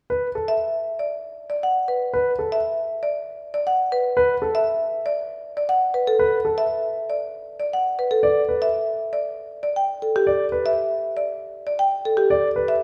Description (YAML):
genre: classical, minimalist pattern music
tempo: 118 BPM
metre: 4/4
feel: straight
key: unclear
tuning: A4 = 440 Hz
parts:
  - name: warm grand piano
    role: arpeggios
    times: 0.1-12.7 s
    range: A4 to D5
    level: -25 LUFS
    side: equal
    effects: none
  - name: marimba with medium hard mallets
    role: melody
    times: 0.5-12.8 s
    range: G4 to G5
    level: -24 LUFS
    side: equal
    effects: none
room: wet scoring stage reverb, RT60 1.8 s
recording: none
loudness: -23 LUFS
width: mono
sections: 0.1-12.8 A section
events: none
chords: 0.1 Asus2; 8.2 G (rootless)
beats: | 0.10 0.61 1.11 1.62 | 2.13 2.64 3.15 3.66 | 4.17 4.67 5.18 5.69 | 6.20 6.71 7.22 7.72 | 8.23 8.74 9.25 9.76 | 10.27 10.78 11.28 11.79 | 12.30 12.81